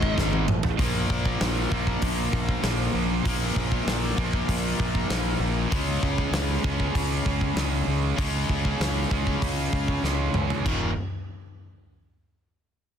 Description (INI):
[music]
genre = heavy metal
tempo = 97 BPM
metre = 4/4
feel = straight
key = unclear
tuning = A4 = 445 Hz
[part]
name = distorted electric guitar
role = riff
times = 0.0-10.9 s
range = Eb2 to Db4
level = -29 LUFS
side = left 11 dB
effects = distortion
[part]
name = distorted electric guitar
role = riff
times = 0.0-0.5 s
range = Ab2 to Ab3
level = -32 LUFS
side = left 2 dB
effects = none
[part]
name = tight distorted guitar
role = riff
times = 0.0-10.9 s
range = Eb2 to Db4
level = -30 LUFS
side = right 13 dB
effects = distortion
[part]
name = fuzz fingered electric bass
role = bass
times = 0.0-10.9 s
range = Eb1 to Db2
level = -28 LUFS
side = equal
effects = overdrive
[part]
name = big rock drum kit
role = drums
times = 0.0-10.8 s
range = china cymbal, hi-hat, kick drum, snare drum, toms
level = -28 LUFS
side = equal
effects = soft clipping on snare
[sound]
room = little or no reverb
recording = dense, heavily limited modern master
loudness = -23 LUFS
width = side -8 dB against mid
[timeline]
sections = 0.8-10.7 A section; 10.7-13.0 B section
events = drum fill 0.2-0.8, 10.0-10.7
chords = 0.0 Ab5; 0.8 Bb5; 5.7 Db5; 10.7 Eb5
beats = 0.17 | 0.79 1.40 2.02 2.63 | 3.25 3.86 4.48 5.10 | 5.71 6.33 6.94 7.56 | 8.18 8.79 9.41 10.03 | 10.65